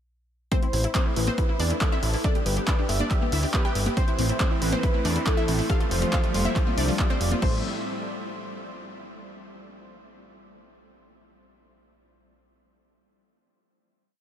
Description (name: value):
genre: uplifting trance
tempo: 139 BPM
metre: 4/4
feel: straight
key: A minor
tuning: A4 = 440 Hz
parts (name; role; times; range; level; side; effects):
- wide unison pluck; melody; 0.5-7.6 s; C4 to G5; -32 LUFS; right 1 dB; sidechain pumping, ping-pong delay
- warm velvety synth lead; second line; 0.5-7.6 s; A4 to E5; -33 LUFS; equal; chorus, tape echo
- wide unison pluck; arpeggios; 0.5-7.6 s; G3 to E4; -35 LUFS; left 2 dB; ensemble chorus, sidechain pumping, ping-pong delay
- electronic kick drum; drums; 0.5-7.5 s; none; -24 LUFS; equal; overdrive, studio reverb
- punchy analog drum machine; drums; 0.5-7.5 s; congas, crash cymbal, handclaps, hi-hat; -31 LUFS; equal; overdrive, sidechain pumping on hats, studio reverb, sidechain pumping on perc, sidechain pumping on cymbals
- fat analog bass; bass; 0.7-7.6 s; F1 to E2; -26 LUFS; equal; sidechain pumping
- supersaw pad; sustained chords; 4.0-7.6 s; A2 to E5; -33 LUFS; right 1 dB; phaser, sidechain pumping
room: moderate huge ambient reverb, RT60 7.5 s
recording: dreamy mix soaked in reverb, faint mains hum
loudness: -22 LUFS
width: side -10 dB against mid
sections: 0.5-7.4 drop; 7.4-9.1 final chord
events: drop 0.5-7.4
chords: 0.5 Am; 2.2 G; 4.0 Am; 5.7 Fadd9; 7.4 A5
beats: | 0.52 0.95 1.38 1.81 | 2.24 2.67 3.11 3.54 | 3.97 4.40 4.83 5.26 | 5.70 6.13 6.56 6.99 | 7.42